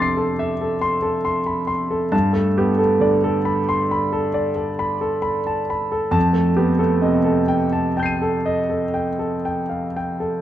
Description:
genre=classical, impressionist solo piano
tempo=38-47 BPM (dotted quarters)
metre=9/8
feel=rubato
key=unclear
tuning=A4 = 439 Hz
part: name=bright concert grand piano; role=solo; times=0.0-10.4 s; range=F2 to Eb7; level=-18 LUFS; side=equal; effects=none
room=moderate large studio reverb, RT60 0.9 s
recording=dark, warm production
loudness=-18 LUFS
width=side -12 dB against mid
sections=0.0-10.4 A section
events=none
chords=0.0 Fmaj7; 2.1 Gadd9; 6.2 F9

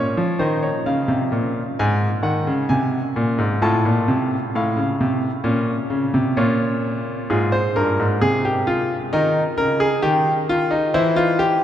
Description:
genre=classical, baroque-style 3-part fugue for grand piano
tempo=65 BPM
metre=4/4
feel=straight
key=Bb minor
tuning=A4 = 438 Hz
part: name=clear concert grand piano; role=solo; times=0.0-11.6 s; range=G2 to A5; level=-17 LUFS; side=equal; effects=none
room=wet cathedral reverb, RT60 5.5 s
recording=in a vast, echoing space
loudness=-17 LUFS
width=side -10 dB against mid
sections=0.0-11.6 A section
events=none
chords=0.0 Bbm; 1.8 Ab; 3.6 F/A; 5.5 Bbm; 7.3 Fm; 9.1 Eb; 10.9 C/E

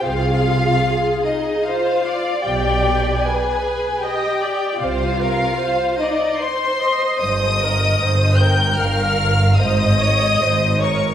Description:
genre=classical, slow romantic movement for string orchestra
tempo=75 BPM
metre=3/4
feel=rubato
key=C minor, Ab major from 7.2 s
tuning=A4 = 441 Hz
part: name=warm studio violin section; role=melody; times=0.0-11.1 s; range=Eb5 to G6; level=-21 LUFS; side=left 3 dB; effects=none
part: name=rich chamber violin section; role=second line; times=0.0-11.1 s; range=Eb4 to G5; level=-24 LUFS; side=equal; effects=none
part: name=rich chamber viola section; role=accompaniment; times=0.0-11.1 s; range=Ab4 to Eb5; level=-22 LUFS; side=right 1 dB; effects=none
part: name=clear chamber double bass section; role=bass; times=0.0-11.1 s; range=G1 to C2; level=-22 LUFS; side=right 1 dB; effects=none
part: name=rich chamber cello section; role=bass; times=0.0-11.1 s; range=G2 to C3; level=-22 LUFS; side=right 1 dB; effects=none
room=wet scoring stage reverb, RT60 1.6 s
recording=heard from further back in the room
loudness=-16 LUFS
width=side -10 dB against mid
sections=0.0-11.1 A section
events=none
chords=0.0 C5; 2.5 G/B; 4.8 Cm11; 7.2 Eb/G; 9.6 Ab5

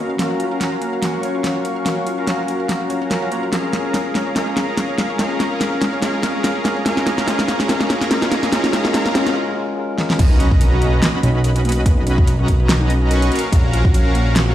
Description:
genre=future bass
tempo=144 BPM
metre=4/4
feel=swing 55% on 16ths, half-time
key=B lydian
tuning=A4 = 439 Hz
part: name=wide unison pluck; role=arpeggios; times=0.0-14.5 s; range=G#3 to E#5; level=-28 LUFS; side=left 1 dB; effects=sidechain pumping, digital delay
part: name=soft supersaw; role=riff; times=0.0-14.5 s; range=C#4 to C#6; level=-21 LUFS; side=equal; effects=sidechain pumping, low-pass filter, digital delay
part: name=bright tine electric piano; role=accompaniment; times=0.2-10.2 s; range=F#3 to E#5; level=-25 LUFS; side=left 2 dB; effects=sidechain pumping, digital delay
part: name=pop drum kit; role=drums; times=0.2-14.4 s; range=crash cymbal, hi-hat, snare drum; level=-21 LUFS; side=equal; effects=none
part: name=riser and impact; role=sound effects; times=4.7-11.9 s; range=none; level=-29 LUFS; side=right 1 dB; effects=none
part: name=fat analog bass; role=bass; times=10.2-14.5 s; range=A#1 to B1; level=-17 LUFS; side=equal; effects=sidechain pumping
part: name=electronic kick drum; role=drums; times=10.2-13.9 s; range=none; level=-15 LUFS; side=equal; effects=none
room=light reverb, digital ambience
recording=played on a big sound system in a bare room, stone room reverb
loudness=-15 LUFS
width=side -12 dB against mid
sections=0.0-10.2 A section; 10.2-14.5 B section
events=build-up 0.0-10.2; drum fill 0.0-9.4, 10.0; filter sweep on supersaw synth 0.0-10.2; break 9.4-10.2; drop 10.2-14.5; impact 10.2-11.9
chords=0.0 F#maj7; 3.5 A#m7; 10.2 Bmaj9; 13.3 F#maj7

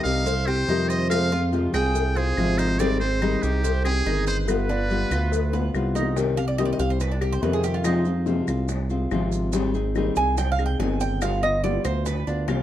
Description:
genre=latin, Cuban son and guajira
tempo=142 BPM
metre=4/4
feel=straight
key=C harmonic minor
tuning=A4 = 440 Hz
part: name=trumpet with metal mute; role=melody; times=0.0-5.7 s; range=G4 to G5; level=-28 LUFS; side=right 1 dB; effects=slapback echo
part: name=nylon-string guitar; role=accompaniment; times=0.0-12.6 s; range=C3 to Ab4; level=-26 LUFS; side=left 3 dB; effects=none
part: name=Cuban tres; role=arpeggios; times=0.0-12.6 s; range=C4 to Ab5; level=-28 LUFS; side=right 4 dB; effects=none
part: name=smooth gliding synth bass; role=bass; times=0.0-12.6 s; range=G1 to F2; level=-25 LUFS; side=right 1 dB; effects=none
part: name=cowbell and bongos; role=percussion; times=0.0-12.6 s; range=none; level=-33 LUFS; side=left 6 dB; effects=none
part: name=maracas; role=percussion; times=0.1-12.6 s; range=none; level=-41 LUFS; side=right 9 dB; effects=none
part: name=claves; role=percussion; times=0.5-12.6 s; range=none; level=-38 LUFS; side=left 6 dB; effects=none
room=light reverb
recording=dark, warm production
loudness=-21 LUFS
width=side -12 dB against mid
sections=0.0-6.2 A section; 6.2-12.6 B section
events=drum fill 5.5-6.2; Cuban tres solo 6.2-12.6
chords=0.0 Cm; 1.1 Fm; 2.8 Abmaj7; 4.5 G7; 6.2 Cm; 7.8 Fm; 9.5 Abmaj7; 11.2 G7

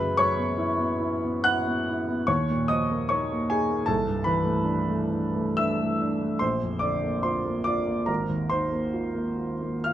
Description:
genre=classical, impressionist solo piano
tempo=62-79 BPM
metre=5/4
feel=rubato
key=unclear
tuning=A4 = 440 Hz
part: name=warm grand piano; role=solo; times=0.0-9.9 s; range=G#1 to F#6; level=-23 LUFS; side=equal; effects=none
room=light reverb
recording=minimal, uncompressed stereo recording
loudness=-24 LUFS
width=side -12 dB against mid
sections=0.0-9.9 A section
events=none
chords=0.0 F#7sus4; 2.3 Eb9sus4; 3.9 C69; 6.4 Bbadd9; 8.1 G#69

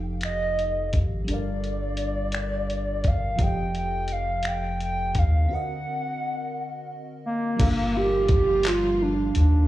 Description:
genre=slow six-eight R&B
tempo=57 BPM (dotted quarters)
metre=6/8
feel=straight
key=G minor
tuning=A4 = 439 Hz
part: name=FM electric piano with soft pad layer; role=accompaniment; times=0.0-9.7 s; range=D3 to F5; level=-34 LUFS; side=equal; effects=chorus, slapback echo
part: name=round analog bass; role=bass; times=0.0-9.7 s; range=F1 to Eb2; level=-26 LUFS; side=equal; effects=none
part: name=hollow clarinet-like synth lead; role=melody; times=0.2-9.7 s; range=Bb3 to G5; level=-26 LUFS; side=right 1 dB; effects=chorus, slapback echo
part: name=dusty soul sampler-style drum kit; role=drums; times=0.2-9.5 s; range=crash cymbal, finger snaps, handclaps, hi-hat, kick drum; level=-25 LUFS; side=equal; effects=none
part: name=warm studio string section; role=sustained chords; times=7.6-9.7 s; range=Bb2 to F4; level=-35 LUFS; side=equal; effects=none
room=light reverb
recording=live gig heard through the venue's PA, club ambience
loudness=-22 LUFS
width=side -14 dB against mid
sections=0.0-7.6 A section; 7.6-9.7 B section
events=break 5.5-7.6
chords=0.0 F9; 1.3 Gm9; 3.4 F9; 5.5 D7b9b13; 7.6 Gm7

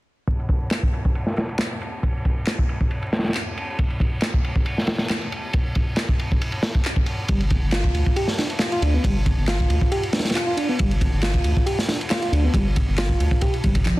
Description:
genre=breakbeat, breaks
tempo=137 BPM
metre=4/4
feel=swing 54% on 16ths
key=unclear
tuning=A4 = 441 Hz
part: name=crunchy breakbeat drum kit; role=drums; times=0.3-14.0 s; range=kick drum, ride cymbal, snare drum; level=-21 LUFS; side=equal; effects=low-pass filter on kick, low-pass filter on cymbals, low-pass filter on snare, low-pass filter on room
part: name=electronic handclaps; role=drums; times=0.7-13.9 s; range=none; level=-31 LUFS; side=equal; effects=none
part: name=mellow reed electric piano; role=riff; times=7.3-14.0 s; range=F3 to G4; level=-25 LUFS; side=right 1 dB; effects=fast tremolo, dub echo
part: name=saturated sub bass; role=bass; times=7.3-14.0 s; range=G1 to D2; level=-22 LUFS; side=equal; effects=none
room=small room ambience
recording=dense, heavily limited modern master, vinyl crackle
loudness=-20 LUFS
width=side -18 dB against mid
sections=0.3-14.0 A section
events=filter sweep on drum 0.3-14.0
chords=0.3 N.C.; 7.3 G7(no3)

